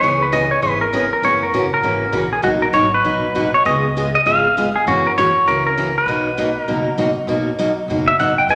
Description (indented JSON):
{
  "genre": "country, western swing",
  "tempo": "198 BPM",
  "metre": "4/4",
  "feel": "swing 62% on 8ths",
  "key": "B major",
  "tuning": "A4 = 440 Hz",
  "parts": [
    { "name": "clean lap steel guitar", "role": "melody", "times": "0.0-8.6 s", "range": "F#4 to G#5", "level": "-18 LUFS", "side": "equal", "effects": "none" },
    { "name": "picked steel-string acoustic guitar", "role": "accompaniment", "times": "0.0-8.6 s", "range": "B2 to G#4", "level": "-22 LUFS", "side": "equal", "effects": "none" },
    { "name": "upright bass", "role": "bass", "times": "0.0-8.6 s", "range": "F#1 to F#2", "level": "-30 LUFS", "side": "equal", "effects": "none" }
  ],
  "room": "wet large studio reverb, RT60 1.4 s",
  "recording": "none",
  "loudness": "-17 LUFS",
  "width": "mono",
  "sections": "0.0-7.3 A section; 7.3-8.6 B section",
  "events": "electric slide guitar solo 7.3-8.6",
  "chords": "0.0 C#m7; 1.2 F#7; 2.4 Bmaj7; 3.7 C#7; 4.9 F#7; 6.1 Bmaj7"
}